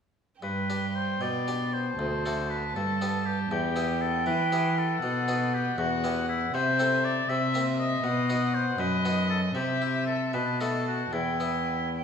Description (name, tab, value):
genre	classical, baroque-style sonata movement with continuo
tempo	79 BPM (dotted quarters)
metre	6/8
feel	rubato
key	G major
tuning	A4 = 440 Hz
part	clear oboe	melody	0.4-11.9 s	E4 to E5	-30 LUFS	left 4 dB	none
part	dark violin	second line	0.4-12.0 s	D#5 to A5	-33 LUFS	right 3 dB	none
part	harpsichord	accompaniment	0.4-12.0 s	D2 to Bb4	-33 LUFS	left 1 dB	none
part	rich cello	bass	0.4-12.0 s	D2 to E3	-29 LUFS	equal	none
room	wet recital hall reverb, RT60 1.4 s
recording	studio reverb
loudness	-25 LUFS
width	side -7 dB against mid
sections	0.4-12.0 A section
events	none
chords	0.4 G; 2.0 D7; 2.8 G; 3.5 Em; 5.0 B7; 5.8 Em; 6.5 Am/C; 7.3 C7; 8.0 B; 9.6 C; 10.3 B7; 11.1 Em